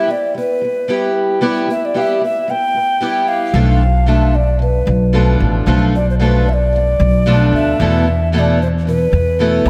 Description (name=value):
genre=pop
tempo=113 BPM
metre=4/4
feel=swing 55% on 16ths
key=unclear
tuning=A4 = 440 Hz
part: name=bright alto ocarina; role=melody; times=0.0-9.7 s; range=B4 to G5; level=-20 LUFS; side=equal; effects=delay
part: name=fingerpicked twelve-string acoustic guitar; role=accompaniment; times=0.0-9.7 s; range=E2 to A4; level=-20 LUFS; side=equal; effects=none
part: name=upright bass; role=bass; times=3.5-9.7 s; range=A1 to E2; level=-16 LUFS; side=equal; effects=none
room=moderate plate reverb, RT60 3.5 s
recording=dreamy mix soaked in reverb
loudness=-15 LUFS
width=mono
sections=0.0-9.7 A section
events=none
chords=0.0 Em/G; 3.5 Bm7b5; 7.8 Esus4